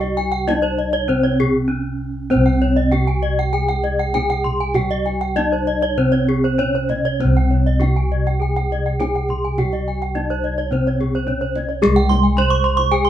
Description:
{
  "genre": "Balinese gamelan",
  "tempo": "98-110 BPM",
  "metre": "4/4",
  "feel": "straight",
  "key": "C pelog",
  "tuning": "A4 = 440 Hz",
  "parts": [
    { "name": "gamelan-type bronze metallophone", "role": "melody", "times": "0.0-13.1 s", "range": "Ab3-40c to C5", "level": "-22 LUFS", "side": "right 1 dB", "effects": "none" },
    { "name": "gamelan-type bronze metallophone", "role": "accompaniment", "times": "0.0-13.1 s", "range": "C3 to Ab3-40c", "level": "-28 LUFS", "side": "right 3 dB", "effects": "none" },
    { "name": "gamelan-type bronze metallophone", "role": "arpeggios", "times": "0.0-13.1 s", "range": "C5 to Db6", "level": "-25 LUFS", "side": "right 5 dB", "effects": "none" },
    { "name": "gamelan-type bossed gongs", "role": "bass", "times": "0.0-13.1 s", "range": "C2 to Ab4-40c", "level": "-21 LUFS", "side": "equal", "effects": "none" },
    { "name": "kendang", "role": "percussion", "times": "0.0-12.9 s", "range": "none", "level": "-29 LUFS", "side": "right 2 dB", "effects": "none" },
    { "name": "gamelan-type bronze metallophone", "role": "arpeggios", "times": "0.2-13.1 s", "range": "Ab4-40c to C6", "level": "-23 LUFS", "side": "left 4 dB", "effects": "none" }
  ],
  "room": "wet studio ambience, RT60 0.5 s",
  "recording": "band playing live in one room, nothing above 11.0 kHz",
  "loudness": "-16 LUFS",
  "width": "side -11 dB against mid",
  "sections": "0.0-11.8 A section; 11.8-13.1 B section",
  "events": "break 1.4-2.3",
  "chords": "none",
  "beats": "0.47 1.08 1.69 | 2.30 2.92 3.53 4.14 | 4.75 5.36 5.98 6.59 | 7.20 7.81 8.41 9.00 | 9.58 10.15 10.72 11.28 | 11.83 12.37 12.92"
}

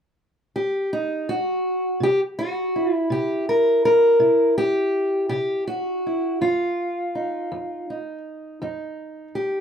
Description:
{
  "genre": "acoustic country blues, solo or duo",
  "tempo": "55 BPM (dotted quarters)",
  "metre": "12/8",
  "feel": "straight",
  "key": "unclear",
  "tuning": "A4 = 439 Hz",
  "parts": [
    { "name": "fingerpicked steel-string acoustic guitar", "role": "solo", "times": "0.6-9.6 s", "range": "F2 to Bb4", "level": "-20 LUFS", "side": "equal", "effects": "none" }
  ],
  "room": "moderate studio reverb, RT60 0.5 s",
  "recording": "band playing live in one room",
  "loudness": "-20 LUFS",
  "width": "side -8 dB against mid",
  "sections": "0.0-2.0 A section; 2.0-9.6 B section",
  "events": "none",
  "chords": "0.0 N.C.; 2.0 C7; 6.4 Ebsus2/F",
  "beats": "0.93 | 2.03 3.13 4.22 5.32 | 6.42 7.52 8.62"
}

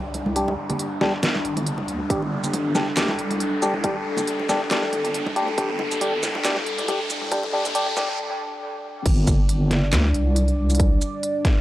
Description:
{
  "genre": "deep dubstep",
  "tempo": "138 BPM",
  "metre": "4/4",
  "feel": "swing 55% on 16ths, half-time",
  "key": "unclear",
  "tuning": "A4 = 440 Hz",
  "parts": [
    { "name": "dark analog pad", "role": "sustained chords", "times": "0.0-11.6 s", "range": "G3 to D5", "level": "-28 LUFS", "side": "equal", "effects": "chorus, phaser" },
    { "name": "wobble bass", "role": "bass", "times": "0.0-11.0 s", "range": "G1 to D2", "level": "-24 LUFS", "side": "equal", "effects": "chorus" },
    { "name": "riser", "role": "sound effects", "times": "0.0-8.2 s", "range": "none", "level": "-30 LUFS", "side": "equal", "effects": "none" },
    { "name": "dubstep drum kit", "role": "drums", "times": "0.1-11.5 s", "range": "crash cymbal, handclaps, hi-hat, shaker, snare drum", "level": "-26 LUFS", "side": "equal", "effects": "studio reverb" },
    { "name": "congas", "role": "percussion", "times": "0.1-8.1 s", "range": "none", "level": "-31 LUFS", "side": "right 2 dB", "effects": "dub echo" },
    { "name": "percussive organ stab", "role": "stabs", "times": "0.4-8.1 s", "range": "G3 to G4", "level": "-27 LUFS", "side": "left 1 dB", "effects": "chorus, cassette tape, dub echo" },
    { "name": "electronic kick drum", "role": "drums", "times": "2.1-11.5 s", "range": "none", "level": "-21 LUFS", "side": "equal", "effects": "studio reverb" }
  ],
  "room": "light reverb",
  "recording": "dry, gritty hardware recording, transformer saturation, cassette tape, high-pass filter",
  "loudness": "-20 LUFS",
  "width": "side -15 dB against mid",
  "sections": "0.0-9.1 A section; 9.1-11.6 B section",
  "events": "build-up 0.0-9.1; riser 0.0-8.2; filter sweep on synth stab 0.0-9.1; filter sweep 0.0-9.1; break 8.2-9.1; drop 9.1-11.6",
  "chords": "0.0 G5",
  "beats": "| 0.36 0.80 1.23 1.67 | 2.10 2.54 2.97 3.40 | 3.84 4.27 4.71 5.14 | 5.58 6.01 6.45 6.88 | 7.32 7.75 8.19 8.62 | 9.06 9.49 9.93 10.36 | 10.80 11.23"
}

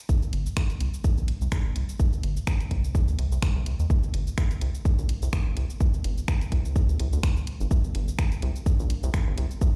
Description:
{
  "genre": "minimal techno",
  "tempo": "126 BPM",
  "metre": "4/4",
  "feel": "swing 56% on 16ths",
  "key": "unclear",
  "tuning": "A4 = 440 Hz",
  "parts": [
    { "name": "rubbery square bass", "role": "bass", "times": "0.1-9.7 s", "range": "G1 to Eb2", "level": "-29 LUFS", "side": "equal", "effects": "sidechain pumping" },
    { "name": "electronic kick drum", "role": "drums", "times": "0.1-9.7 s", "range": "none", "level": "-26 LUFS", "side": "equal", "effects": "none" },
    { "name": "house drum kit", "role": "drums", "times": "0.1-9.7 s", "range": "finger snaps, hi-hat, shaker", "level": "-39 LUFS", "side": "equal", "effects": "none" }
  ],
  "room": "little or no reverb",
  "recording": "played on a big sound system in a bare room, large studio reverb",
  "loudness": "-26 LUFS",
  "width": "mono",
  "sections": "0.1-9.8 A section",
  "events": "drop 0.1-9.8",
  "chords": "none",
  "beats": "| 0.09 0.57 1.04 1.52 | 2.00 2.47 2.95 3.42 | 3.90 4.38 4.85 5.33 | 5.80 6.28 6.76 7.23 | 7.71 8.19 8.66 9.14 | 9.61"
}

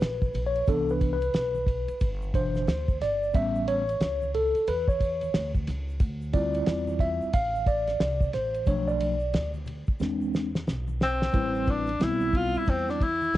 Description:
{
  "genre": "hip hop, jazz-hop",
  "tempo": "90 BPM",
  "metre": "4/4",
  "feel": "swing 62% on 16ths",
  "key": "A minor",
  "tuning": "A4 = 441 Hz",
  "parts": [
    { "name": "mellow tine electric piano", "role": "accompaniment", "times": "0.0-13.1 s", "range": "B2 to F5", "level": "-27 LUFS", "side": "equal", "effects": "medium stereo tremolo, cassette tape" },
    { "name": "upright bass", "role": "bass", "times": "0.0-13.4 s", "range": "G1 to E2", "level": "-32 LUFS", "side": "equal", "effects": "none" },
    { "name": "cloth-damped thuddy drum kit", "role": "drums", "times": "0.0-13.4 s", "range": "hi-hat, kick drum, ride cymbal, snare drum", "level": "-26 LUFS", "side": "equal", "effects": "none" },
    { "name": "tube shaker and congas", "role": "percussion", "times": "0.0-13.4 s", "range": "none", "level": "-44 LUFS", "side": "left 6 dB", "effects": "none" },
    { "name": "breathy tenor saxophone", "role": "melody", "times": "11.0-13.4 s", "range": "C4 to F4", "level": "-27 LUFS", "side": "left 2 dB", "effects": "cassette tape" }
  ],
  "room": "light reverb, small room reverb",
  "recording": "home recording on cassette, nothing above 10.8 kHz",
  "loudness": "-24 LUFS",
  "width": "side -15 dB against mid",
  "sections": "0.0-11.3 A section; 11.3-13.4 B section",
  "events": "tine electric piano solo 0.0-11.3; drum fill 10.0-11.3",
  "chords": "0.0 C#7(no3); 0.7 Cmaj7; 3.3 A7; 6.0 Dm11; 8.7 Bm7b5; 10.0 E7b13; 11.3 Am9",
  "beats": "0.01 | 0.67 1.34 2.01 2.67 | 3.34 4.01 4.67 5.34 | 6.01 6.67 7.34 8.01 | 8.67 9.34 10.01 10.67 | 11.34 12.01 12.67 13.34"
}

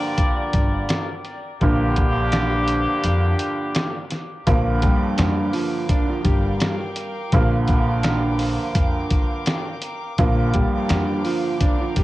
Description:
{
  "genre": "hip hop, boom-bap hip-hop",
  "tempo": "84 BPM",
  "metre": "4/4",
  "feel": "swing 55% on 16ths",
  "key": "Bb major",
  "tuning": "A4 = 440 Hz",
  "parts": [
    { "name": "warm upright piano", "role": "accompaniment", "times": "0.0-12.0 s", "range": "G2 to Bb3", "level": "-24 LUFS", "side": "right 2 dB", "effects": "cassette tape, high-pass filter, low-pass filter" },
    { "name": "warm horn section", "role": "stabs", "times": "0.0-4.1 s", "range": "Bb3 to D5", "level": "-25 LUFS", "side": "left 2 dB", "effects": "high-pass filter, low-pass filter, cassette tape, tape echo" },
    { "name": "dusty soul sampler-style drum kit", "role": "drums", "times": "0.2-12.0 s", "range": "hi-hat, kick drum, snare drum", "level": "-22 LUFS", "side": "equal", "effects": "none" },
    { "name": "upright bass", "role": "bass", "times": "0.5-12.0 s", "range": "G1 to F2", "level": "-23 LUFS", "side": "equal", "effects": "none" },
    { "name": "finger snaps", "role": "percussion", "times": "0.9-11.1 s", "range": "none", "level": "-36 LUFS", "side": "right 4 dB", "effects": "none" },
    { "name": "dark studio string section", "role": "sustained chords", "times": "4.5-12.0 s", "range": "Bb4 to D6", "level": "-32 LUFS", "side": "equal", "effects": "high-pass filter, low-pass filter, cassette tape" },
    { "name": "electric guitar at the edge of break-up", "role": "melody", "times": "4.8-12.0 s", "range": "F3 to D5", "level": "-26 LUFS", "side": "equal", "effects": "high-pass filter, low-pass filter, cassette tape, tape echo" }
  ],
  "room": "light reverb, studio reverb",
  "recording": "home recording on cassette",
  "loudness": "-18 LUFS",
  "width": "side -17 dB against mid",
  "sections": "0.0-4.5 A section; 4.5-12.0 B section",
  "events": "break 3.0-4.5",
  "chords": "0.0 Bb6",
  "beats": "0.18 0.90 | 1.61 2.33 3.04 3.75 | 4.47 5.18 5.90 6.61 | 7.33 8.04 8.76 9.47 | 10.18 10.90 11.61"
}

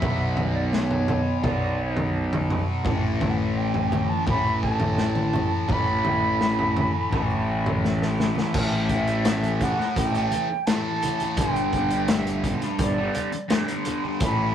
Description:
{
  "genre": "psychedelic rock",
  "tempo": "85 BPM",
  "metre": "4/4",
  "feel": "straight",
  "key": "unclear",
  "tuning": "A4 = 441 Hz",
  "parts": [
    { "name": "mellow hollow silver concert flute", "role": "melody", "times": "0.0-14.5 s", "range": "C#5 to B5", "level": "-28 LUFS", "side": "right 3 dB", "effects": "none" },
    { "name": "fuzz guitar", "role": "riff", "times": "0.0-14.5 s", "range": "G2 to B3", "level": "-27 LUFS", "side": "left 1 dB", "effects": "distortion, phaser" },
    { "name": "fuzz picked electric bass", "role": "bass", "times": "0.0-14.5 s", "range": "G1 to B1", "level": "-27 LUFS", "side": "equal", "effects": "overdrive" },
    { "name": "crunchy breakbeat drum kit", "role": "drums", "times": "0.0-14.4 s", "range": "crash cymbal, hi-hat, kick drum, snare drum, toms", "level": "-26 LUFS", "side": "left 1 dB", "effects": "none" },
    { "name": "congas", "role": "percussion", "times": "1.1-14.2 s", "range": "none", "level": "-38 LUFS", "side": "right 4 dB", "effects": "none" }
  ],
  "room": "moderate small room reverb, RT60 0.5 s",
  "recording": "rough rehearsal-room recording",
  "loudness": "-21 LUFS",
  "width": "side -9 dB against mid",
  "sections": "0.0-8.5 A section; 8.5-14.5 B section",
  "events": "drum fill 7.7-8.5",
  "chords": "0.0 Bm; 2.9 A5; 11.4 G5",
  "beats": "| 0.03 0.74 1.45 2.16 | 2.87 3.58 4.29 5.00 | 5.71 6.42 7.12 7.83 | 8.54 9.25 9.96 10.66 | 11.37 12.08 12.79 13.50 | 14.21"
}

